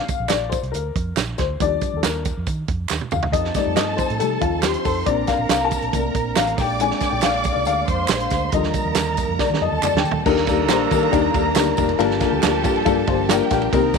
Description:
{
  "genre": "uptempo 1960s-style soul",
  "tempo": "139 BPM",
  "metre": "4/4",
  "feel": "straight",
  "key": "unclear",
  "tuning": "A4 = 438 Hz",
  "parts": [
    { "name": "dark upright piano", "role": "accompaniment", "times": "0.0-14.0 s", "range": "D3 to A5", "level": "-21 LUFS", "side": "left 11 dB", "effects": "none" },
    { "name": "warm soul drum kit", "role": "drums", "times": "0.1-14.0 s", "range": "crash cymbal, hi-hat, kick drum, ride cymbal, snare drum, toms", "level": "-24 LUFS", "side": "right 6 dB", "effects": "none" },
    { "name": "tambourine and handclaps", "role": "percussion", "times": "0.1-14.0 s", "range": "none", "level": "-31 LUFS", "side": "right 4 dB", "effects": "none" },
    { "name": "vintage muted fingered electric bass", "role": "bass", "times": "0.2-14.0 s", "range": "F1 to Eb3", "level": "-27 LUFS", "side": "right 1 dB", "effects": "none" },
    { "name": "warm studio violin section", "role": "second line", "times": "3.3-14.0 s", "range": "Bb3 to D6", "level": "-25 LUFS", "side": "right 2 dB", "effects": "none" },
    { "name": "tonewheel organ", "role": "sustained chords", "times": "3.3-14.0 s", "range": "D3 to Eb4", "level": "-30 LUFS", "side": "right 17 dB", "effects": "stopped rotary speaker" },
    { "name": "mellow saxophone section", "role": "second line", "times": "10.3-14.0 s", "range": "D3 to Bb4", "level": "-28 LUFS", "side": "right 15 dB", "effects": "none" }
  ],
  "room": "moderate spring reverb, RT60 2.0 s, small room reverb",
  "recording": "1960s-style stereo with parts hard left and right",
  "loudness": "-18 LUFS",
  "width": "side -5 dB against mid",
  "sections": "0.0-10.3 A section; 10.3-14.0 B section",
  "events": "upright piano solo 0.0-10.3; drum fill 2.9-3.3, 9.4-10.3",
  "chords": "0.0 Bb7; 1.6 Ebmaj7; 3.3 F7; 5.1 Bbmaj7; 6.6 Bb7; 8.5 Ebmaj7; 12.0 Gm7",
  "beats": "0.31 0.74 1.18 | 1.61 2.04 2.47 2.91 | 3.34 3.77 4.20 4.64 | 5.07 5.50 5.93 6.37 | 6.80 7.23 7.67 8.10 | 8.53 8.97 9.40 9.83 | 10.26 10.70 11.13 11.56 | 11.99 12.43 12.86 13.29 | 13.72"
}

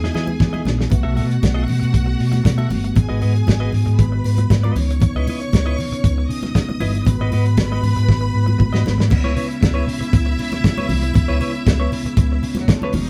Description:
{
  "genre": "disco",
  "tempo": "117 BPM",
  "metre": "4/4",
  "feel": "straight",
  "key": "C# minor",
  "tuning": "A4 = 443 Hz",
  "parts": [
    { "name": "clear studio string section", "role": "second line", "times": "0.0-13.1 s", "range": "F#3 to D#6", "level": "-32 LUFS", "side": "equal", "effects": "none" },
    { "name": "clean electric guitar", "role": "accompaniment", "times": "0.0-13.0 s", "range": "E4 to E5", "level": "-31 LUFS", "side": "equal", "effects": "none" },
    { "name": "percussive tonewheel organ", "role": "sustained chords", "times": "0.0-13.1 s", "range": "C#3 to F#4", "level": "-28 LUFS", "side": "equal", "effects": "fast rotary speaker" },
    { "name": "overdriven fingered electric bass", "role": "bass", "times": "0.0-13.1 s", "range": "E#1 to E3", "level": "-22 LUFS", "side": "equal", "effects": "none" },
    { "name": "warm soul drum kit", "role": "drums", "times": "0.0-13.1 s", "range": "crash cymbal, hi-hat, kick drum, snare drum", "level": "-20 LUFS", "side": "equal", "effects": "none" },
    { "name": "congas", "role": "percussion", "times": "0.1-13.1 s", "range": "none", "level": "-30 LUFS", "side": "equal", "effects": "none" }
  ],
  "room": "moderate small room ambience, RT60 0.5 s",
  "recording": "band playing live in one room",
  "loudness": "-18 LUFS",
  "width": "mono",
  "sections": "0.9-9.1 A section; 9.1-13.1 B section",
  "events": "drum fill 0.0-0.9, 8.1-9.1",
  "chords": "0.0 Emaj7; 0.9 B7sus4; 3.0 G#m7; 4.8 C#m9; 7.1 G#m7; 9.1 C#m7",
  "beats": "0.41 | 0.92 1.43 1.94 2.45 | 2.96 3.48 3.99 4.50 | 5.01 5.52 6.04 6.55 | 7.06 7.57 8.08 8.60 | 9.11 9.62 10.13 10.64 | 11.15 11.66 12.17 12.68"
}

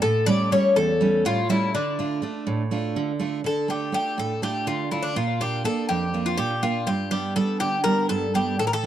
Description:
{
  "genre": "greek folk",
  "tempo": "245 BPM (eighths)",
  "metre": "7/8",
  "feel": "straight",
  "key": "D harmonic minor",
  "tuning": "A4 = 440 Hz",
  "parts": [
    { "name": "Greek bouzouki", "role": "melody", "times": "0.0-8.9 s", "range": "D4 to D5", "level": "-24 LUFS", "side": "left 2 dB", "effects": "tape echo" },
    { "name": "picked steel-string acoustic guitar", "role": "accompaniment", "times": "0.0-8.9 s", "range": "E2 to F4", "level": "-24 LUFS", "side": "right 3 dB", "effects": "none" }
  ],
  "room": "little or no reverb",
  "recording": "dry, close 1970s-style studio recording",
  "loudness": "-21 LUFS",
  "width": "side -11 dB against mid",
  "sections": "0.0-3.5 A section; 3.5-8.9 B section",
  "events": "none",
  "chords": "0.0 A7; 1.7 Dm; 5.2 Bb; 6.9 G",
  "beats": "| 0.03 0.27 0.52 0.76 1.01 1.25 1.49 | 1.74 1.98 2.23 2.47 2.72 2.96 3.21 | 3.45 3.69 3.94 4.18 4.43 4.67 4.92 | 5.16 5.41 5.65 5.90 6.14 6.39 6.63 | 6.88 7.12 7.37 7.61 7.86 8.10 8.35 | 8.59 8.84"
}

